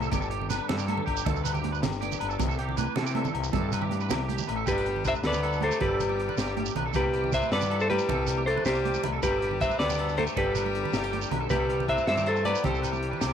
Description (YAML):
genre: highlife guitar band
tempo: 105 BPM (dotted quarters)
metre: 12/8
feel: straight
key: G major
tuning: A4 = 440 Hz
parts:
  - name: nylon-string guitar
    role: accompaniment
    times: 0.0-13.3 s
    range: G2 to G4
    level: -37 LUFS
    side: left 13 dB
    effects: none
  - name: electric guitar at the edge of break-up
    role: arpeggios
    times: 0.0-13.3 s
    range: G4 to B4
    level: -34 LUFS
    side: right 11 dB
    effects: ensemble chorus, slapback echo
  - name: growling FM bass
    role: bass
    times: 0.0-13.3 s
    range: G1 to C3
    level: -32 LUFS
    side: equal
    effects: none
  - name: congas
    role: percussion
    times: 0.0-13.3 s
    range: none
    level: -36 LUFS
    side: right 12 dB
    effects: none
  - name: shekere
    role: percussion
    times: 0.0-13.3 s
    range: none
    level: -38 LUFS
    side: right 9 dB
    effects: none
  - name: crunchy breakbeat drum kit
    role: drums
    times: 0.1-13.3 s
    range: hi-hat, kick drum, snare drum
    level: -34 LUFS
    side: left 1 dB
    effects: none
  - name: agogo bells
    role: percussion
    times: 0.1-13.3 s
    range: none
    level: -37 LUFS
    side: left 15 dB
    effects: none
  - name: semi-hollow electric guitar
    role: melody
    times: 4.7-13.3 s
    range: G4 to E5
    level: -28 LUFS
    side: equal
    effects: none
  - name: breathy tenor saxophone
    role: second line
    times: 4.7-13.3 s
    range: G3 to C4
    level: -36 LUFS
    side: left 10 dB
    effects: none
room: moderate spring reverb, RT60 1.9 s, small room reverb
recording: 1960s-style stereo with parts hard left and right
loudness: -25 LUFS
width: side -8 dB against mid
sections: 0.0-4.7 A section; 4.7-13.3 B section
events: none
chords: 0.1 G; 2.4 Cmaj7; 4.7 G; 7.0 Cmaj7; 9.2 G; 11.5 Cmaj7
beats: | 0.12 0.69 1.26 1.83 | 2.40 2.97 3.54 4.11 | 4.67 5.24 5.81 6.38 | 6.95 7.52 8.09 8.66 | 9.23 9.80 10.37 10.94 | 11.50 12.07 12.64 13.21